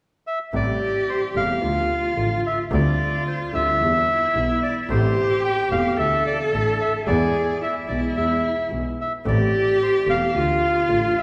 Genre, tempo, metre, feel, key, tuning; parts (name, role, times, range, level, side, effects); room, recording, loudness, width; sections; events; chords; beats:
tango; 110 BPM; 4/4; rubato; A minor; A4 = 437 Hz
bandoneon; melody; 0.3-11.2 s; A4 to G5; -26 LUFS; equal
warm cello; second line; 0.5-11.2 s; E4 to A4; -26 LUFS; equal
warm grand piano; accompaniment; 0.5-11.1 s; E1 to A4; -30 LUFS; equal
clear double bass; bass; 0.5-11.1 s; E1 to E2; -29 LUFS; equal
wet concert hall reverb, RT60 2.4 s; recorded in a church or concert hall; -21 LUFS; mono
0.5-11.2 A section
0.0 N.C.; 0.5 Am7; 1.6 Dm; 2.7 Gsus4/D; 3.8 Em; 4.9 Am7; 6.0 Dsus2; 7.1 E; 9.3 Am7; 10.3 Dmadd9
| 0.53 1.07 1.62 2.17 | 2.71 3.26 3.80 4.34 | 4.89 5.43 5.98 6.52 | 7.07 7.61 8.16 8.71 | 9.25 9.80 10.34 10.88